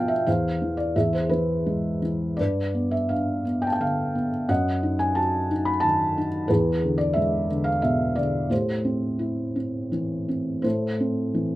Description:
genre	classical, lyrical solo piano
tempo	81-91 BPM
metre	3/4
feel	rubato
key	unclear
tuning	A4 = 438 Hz
part	felt-muted upright piano	solo	0.0-11.6 s	E2 to B5	-22 LUFS	equal	none
room	light reverb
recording	none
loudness	-22 LUFS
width	side -16 dB against mid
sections	0.0-10.6 A section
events	none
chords	0.3 Dm9/E; 1.0 E; 2.4 G; 4.5 F#m69; 6.5 E7; 8.5 Am7; 10.6 Am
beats	| 0.27 0.96 1.66 | 2.38 3.10 3.81 | 4.49 5.17 5.83 | 6.50 7.17 7.83 | 8.51 9.20 9.92 | 10.65 11.35

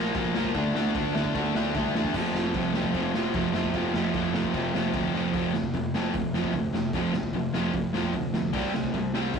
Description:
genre	punk rock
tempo	150 BPM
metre	4/4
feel	straight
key	F major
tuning	A4 = 440 Hz
part	crunchy overdriven guitar	riff	0.0-9.4 s	F2 to D4	-29 LUFS	right 5 dB	none
part	distorted electric guitar	riff	0.0-9.4 s	F2 to D4	-30 LUFS	left 6 dB	overdrive
part	fuzz picked electric bass	bass	0.0-9.4 s	F1 to F2	-36 LUFS	left 1 dB	overdrive
part	raw garage drum kit	drums	0.1-9.4 s	crash cymbal, hi-hat, kick drum, ride cymbal, snare drum	-30 LUFS	equal	none
room	light reverb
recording	rough rehearsal-room recording, warm saturation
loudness	-24 LUFS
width	side -6 dB against mid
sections	0.0-5.3 A section; 5.3-9.4 B section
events	drum fill 5.1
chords	0.0 Bb5; 0.6 D5; 2.1 F5; 8.5 C5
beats	0.15 | 0.55 0.95 1.35 1.75 | 2.15 2.55 2.95 3.34 | 3.74 4.14 4.54 4.94 | 5.34 5.74 6.14 6.54 | 6.94 7.34 7.74 8.14 | 8.54 8.95 9.35

